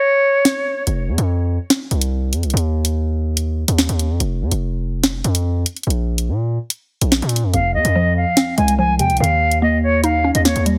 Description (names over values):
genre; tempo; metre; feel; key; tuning
hip hop, drill; 144 BPM; 4/4; half-time; F minor; A4 = 440 Hz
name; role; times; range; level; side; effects
silver concert flute; melody; 0.0-0.8, 7.5-10.6 s; Db5 to Ab5; -20 LUFS; equal; low-pass filter, digital delay
drill drum kit; drums; 0.5-10.8 s; hi-hat, snare drum; -21 LUFS; equal; none
distorted 808-style bass; bass; 0.9-10.8 s; F1 to Bb2; -21 LUFS; equal; distortion
mallet-like synth pluck; accompaniment; 7.5-10.8 s; F2 to Eb4; -22 LUFS; equal; chorus, low-pass filter
room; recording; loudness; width
light reverb, digital ambience; heavily compressed radio sound; -18 LUFS; mono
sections
0.0-10.8 A section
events
break 0.0-0.9, 0.9-7.5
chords
0.0 N.C.; 0.9 F5; 2.5 N.C.; 5.9 Bb5; 7.5 Fm; 9.2 Eb7(no3)